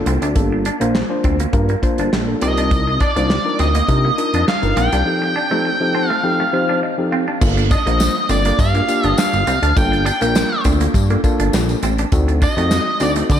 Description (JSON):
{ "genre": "early-eighties boogie funk", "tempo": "102 BPM", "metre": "4/4", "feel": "straight", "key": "G minor", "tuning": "A4 = 438 Hz", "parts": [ { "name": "mellow tine electric piano", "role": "accompaniment", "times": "0.0-13.3 s", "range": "F3 to A5", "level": "-21 LUFS", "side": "left 2 dB", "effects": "none" }, { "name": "chorused synth bass", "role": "bass", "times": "0.0-13.4 s", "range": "G1 to D3", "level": "-18 LUFS", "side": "equal", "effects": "none" }, { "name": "clean electric guitar", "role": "riff", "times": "0.1-13.2 s", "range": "A3 to D4", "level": "-25 LUFS", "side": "right 2 dB", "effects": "lush chorus" }, { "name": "damped 70s drum kit", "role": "drums", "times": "0.1-13.4 s", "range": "crash cymbal, handclaps, hi-hat, kick drum, snare drum", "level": "-20 LUFS", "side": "equal", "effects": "none" }, { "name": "octave-fuzz lead guitar", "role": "melody", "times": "2.4-13.4 s", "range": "D5 to G5", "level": "-20 LUFS", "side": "equal", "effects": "distortion, ping-pong delay" }, { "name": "tambourine", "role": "percussion", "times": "7.4-13.4 s", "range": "none", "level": "-33 LUFS", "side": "left 9 dB", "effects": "none" } ], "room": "moderate plate reverb, RT60 2.2 s", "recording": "dreamy mix soaked in reverb", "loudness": "-14 LUFS", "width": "side -9 dB against mid", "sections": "0.0-7.4 A section; 7.4-13.4 B section", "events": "tine electric piano fill 5.7-7.4", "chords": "0.0 Gm7; 2.4 Cm11; 5.1 F9; 7.4 Gm7; 12.1 D7b9" }